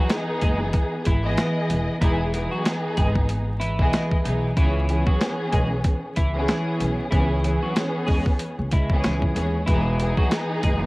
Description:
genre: hip hop, boom-bap hip-hop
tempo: 94 BPM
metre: 4/4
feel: swing 58% on 16ths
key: E major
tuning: A4 = 440 Hz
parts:
  - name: electric guitar at the edge of break-up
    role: melody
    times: 0.0-10.8 s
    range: E3 to G#4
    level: -29 LUFS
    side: equal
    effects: analog chorus, high-pass filter, low-pass filter, cassette tape
  - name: warm studio string section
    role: accompaniment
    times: 0.0-10.9 s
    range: E3 to D#5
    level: -25 LUFS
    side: equal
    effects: cassette tape, high-pass filter, low-pass filter
  - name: boom bap sampler-style drum kit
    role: drums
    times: 0.1-10.8 s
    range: hi-hat, kick drum, snare drum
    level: -21 LUFS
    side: equal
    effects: cassette tape
  - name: upright bass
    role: bass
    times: 0.4-10.9 s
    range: E1 to C#3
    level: -25 LUFS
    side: equal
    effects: none
room: small room ambience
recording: home recording on cassette, vinyl crackle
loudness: -20 LUFS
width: side -22 dB against mid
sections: 0.0-10.9 A section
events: none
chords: 0.0 Emaj7; 4.6 C#m7; 9.7 Emaj7

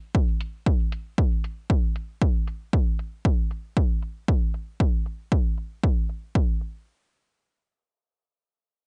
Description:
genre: dub techno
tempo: 116 BPM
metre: 4/4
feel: straight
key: none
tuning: none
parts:
  - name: electronic kick drum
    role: drums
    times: 0.1-6.5 s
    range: none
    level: -24 LUFS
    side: equal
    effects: overdrive
  - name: electronic hi-hat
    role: drums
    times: 0.4-6.7 s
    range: none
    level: -45 LUFS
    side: equal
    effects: overdrive, low-pass filter on hats
room: digital ambience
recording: nothing above 10.3 kHz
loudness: -26 LUFS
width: mono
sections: 0.0-6.9 A section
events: filter sweep on drum 0.0-6.9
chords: none

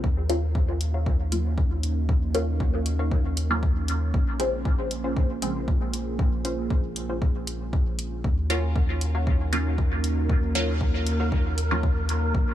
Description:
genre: dub techno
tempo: 117 BPM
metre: 4/4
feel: straight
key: Eb minor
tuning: A4 = 438 Hz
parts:
  - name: dark analog pad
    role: sustained chords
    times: 0.0-12.5 s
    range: Bb3 to Ab4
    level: -34 LUFS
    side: right 2 dB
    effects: chorus, vintage 12-bit sampler grit, sidechain pumping
  - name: filtered dub chord stab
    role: stabs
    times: 0.0-11.9 s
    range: Db3 to F4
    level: -31 LUFS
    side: equal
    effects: phaser, sidechain pumping, dub echo
  - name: soft dub sub bass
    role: bass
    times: 0.0-12.5 s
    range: Bb1 to Eb2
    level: -27 LUFS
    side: equal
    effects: tube saturation, sidechain pumping
  - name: electronic kick drum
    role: drums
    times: 0.0-12.5 s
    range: none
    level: -25 LUFS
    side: equal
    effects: none
  - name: wind-like tuned noise texture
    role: texture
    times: 0.0, 9.1-12.5 s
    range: Bb4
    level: -37 LUFS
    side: right 2 dB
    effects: built-in reverb, sidechain pumping
  - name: warbly dusty pluck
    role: riff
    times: 0.3-11.3 s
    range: Db4 to F5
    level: -37 LUFS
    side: left 2 dB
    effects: chorus, sidechain pumping, dub echo
  - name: electronic hi-hat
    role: drums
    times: 0.3-12.2 s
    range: none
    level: -34 LUFS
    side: left 1 dB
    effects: none
room: little or no reverb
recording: none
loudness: -23 LUFS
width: side -12 dB against mid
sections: 0.0-12.5 A section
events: none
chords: 0.0 Ebm7; 4.1 Bbm7; 8.2 Ebm7

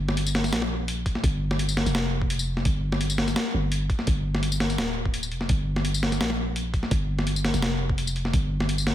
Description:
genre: half-time drum and bass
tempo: 169 BPM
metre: 4/4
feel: half-time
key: G minor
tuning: A4 = 440 Hz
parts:
  - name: growling 808-style bass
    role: bass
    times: 0.0-8.9 s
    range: D1 to Bb1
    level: -26 LUFS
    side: equal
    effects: none
  - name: boom bap sampler-style drum kit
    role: drums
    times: 0.1-8.9 s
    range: hi-hat, snare drum, tambourine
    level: -27 LUFS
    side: left 1 dB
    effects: none
  - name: electronic kick drum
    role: drums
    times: 1.1-8.4 s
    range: none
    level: -26 LUFS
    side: equal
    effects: none
room: little or no reverb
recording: none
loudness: -23 LUFS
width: side -12 dB against mid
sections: 0.0-8.9 A section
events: none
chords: none

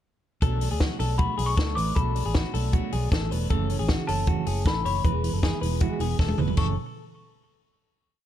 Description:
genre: jangly indie pop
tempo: 156 BPM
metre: 4/4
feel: straight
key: F# minor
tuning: A4 = 440 Hz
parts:
  - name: picked steel-string acoustic guitar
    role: accompaniment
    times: 0.4-6.7 s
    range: F#2 to E4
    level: -32 LUFS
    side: right 8 dB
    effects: tube saturation
  - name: direct-recorded clean electric guitar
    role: arpeggios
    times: 0.4-6.8 s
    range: F#4 to C#5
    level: -33 LUFS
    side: left 8 dB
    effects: spring reverb, digital delay
  - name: vintage muted fingered electric bass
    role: bass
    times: 0.4-6.8 s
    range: E1 to D2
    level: -28 LUFS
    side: equal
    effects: none
  - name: compact cocktail drum kit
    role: drums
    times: 0.4-6.7 s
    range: crash cymbal, hi-hat, kick drum, snare drum, toms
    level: -26 LUFS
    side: equal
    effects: none
  - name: worn celesta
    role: melody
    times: 1.0-6.8 s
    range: A5 to D6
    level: -32 LUFS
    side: left 3 dB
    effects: none
room: little or no reverb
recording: dark, warm production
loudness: -23 LUFS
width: side -11 dB against mid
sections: 0.4-6.6 verse; 6.6-8.1 final chord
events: drum fill 6.2-6.6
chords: 0.4 Bm7; 3.5 F#m7; 5.0 E; 6.6 F#m7

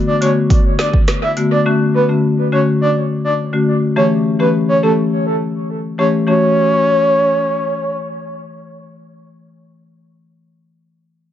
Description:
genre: dancehall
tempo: 104 BPM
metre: 4/4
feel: straight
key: F# phrygian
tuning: A4 = 440 Hz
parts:
  - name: marimba with medium mallets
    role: accompaniment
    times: 0.0-10.0 s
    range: D3 to G4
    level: -16 LUFS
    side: left 2 dB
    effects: sidechain pumping
  - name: breathy flute-like synth lead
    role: melody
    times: 0.1-8.0 s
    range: A4 to E5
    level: -17 LUFS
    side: right 1 dB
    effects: chorus, analog delay
  - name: afro-pop drum kit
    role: drums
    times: 0.2-1.5 s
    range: hi-hat, kick drum, rim click, snare drum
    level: -14 LUFS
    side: right 1 dB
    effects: overdrive, analog delay
room: light reverb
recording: echo-heavy mix, nothing above 7.6 kHz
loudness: -13 LUFS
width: side -11 dB against mid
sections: 0.0-6.3 A section; 6.3-8.6 B section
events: none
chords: 0.0 Bm7; 1.7 Dmaj7; 4.0 A7; 6.3 F#m7

